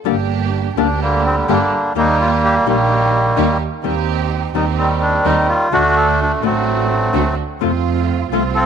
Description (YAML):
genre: tango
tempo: 127 BPM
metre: 4/4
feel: rubato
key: G minor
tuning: A4 = 437 Hz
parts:
  - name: nylon-string guitar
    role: accompaniment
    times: 0.1-8.4 s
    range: C3 to G4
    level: -21 LUFS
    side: left 12 dB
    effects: none
  - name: warm studio string section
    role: stabs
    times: 0.1-8.7 s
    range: A3 to G4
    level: -22 LUFS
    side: right 13 dB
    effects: none
  - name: dark double bass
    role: bass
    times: 0.1-8.7 s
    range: G1 to F2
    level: -20 LUFS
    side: right 4 dB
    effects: none
  - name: bandoneon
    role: melody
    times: 0.8-8.7 s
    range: D3 to A4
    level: -16 LUFS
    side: equal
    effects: none
room: light reverb, small room ambience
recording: 1960s-style stereo with parts hard left and right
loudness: -14 LUFS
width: side -7 dB against mid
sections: 0.1-8.7 A section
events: none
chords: 0.1 Gm; 2.0 Eb; 3.8 Cm/Eb; 5.7 D; 7.6 F